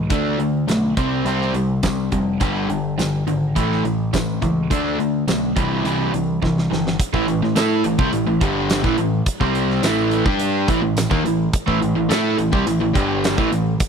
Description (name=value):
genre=classic rock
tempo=105 BPM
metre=4/4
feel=straight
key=A minor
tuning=A4 = 440 Hz
part: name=overdriven electric guitar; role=riff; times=0.0-13.7 s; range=G2 to A4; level=-22 LUFS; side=left 10 dB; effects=none
part: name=overdriven electric guitar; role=riff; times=0.0-13.7 s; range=G2 to A4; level=-22 LUFS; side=right 13 dB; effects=none
part: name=growling picked electric bass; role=bass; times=0.0-13.8 s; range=F1 to A2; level=-25 LUFS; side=right 1 dB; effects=overdrive
part: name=huge arena drum kit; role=drums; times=0.1-13.9 s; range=hi-hat, kick drum, snare drum, tambourine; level=-24 LUFS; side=right 1 dB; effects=none
room=small room ambience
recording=dry, close 1970s-style studio recording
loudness=-17 LUFS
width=side -6 dB against mid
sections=0.0-7.0 A section; 7.0-13.9 B section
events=drum fill 6.4-7.0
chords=0.1 D5; 1.0 C5; 2.4 G5; 3.6 A5; 4.7 D5; 5.6 C; 7.0 Am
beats=| 0.10 0.68 1.26 1.83 | 2.41 2.98 3.56 4.13 | 4.71 5.28 5.85 6.42 | 6.99 7.56 8.13 8.70 | 9.26 9.83 10.40 10.96 | 11.53 12.10 12.66 13.23 | 13.80